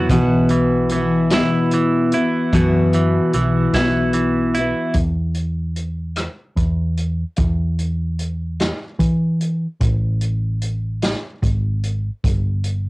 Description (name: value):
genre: folk rock and heartland rock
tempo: 49 BPM (dotted quarters)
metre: 6/8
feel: straight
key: unclear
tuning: A4 = 440 Hz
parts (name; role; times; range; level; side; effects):
- picked steel-string acoustic guitar; accompaniment; 0.0-5.0 s; B2 to F#4; -17 LUFS; left 2 dB; cassette tape
- clean electric guitar; riff; 0.0-5.0 s; B2 to E4; -21 LUFS; right 4 dB; cassette tape
- hollow-body short-scale picked electric bass; bass; 0.1-12.9 s; G1 to E3; -20 LUFS; equal; none
- vintage drum kit; drums; 0.1-12.8 s; hi-hat, kick drum, rim click, snare drum; -22 LUFS; equal; none
room: little or no reverb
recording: home recording on cassette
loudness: -17 LUFS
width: side -20 dB against mid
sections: 0.1-5.0 A section; 5.0-12.9 B section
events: none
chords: 0.1 Bsus4; 5.0 N.C.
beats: | 0.11 1.32 | 2.53 3.75 | 4.96 6.18 | 7.39 8.61 | 9.83 11.04 | 12.26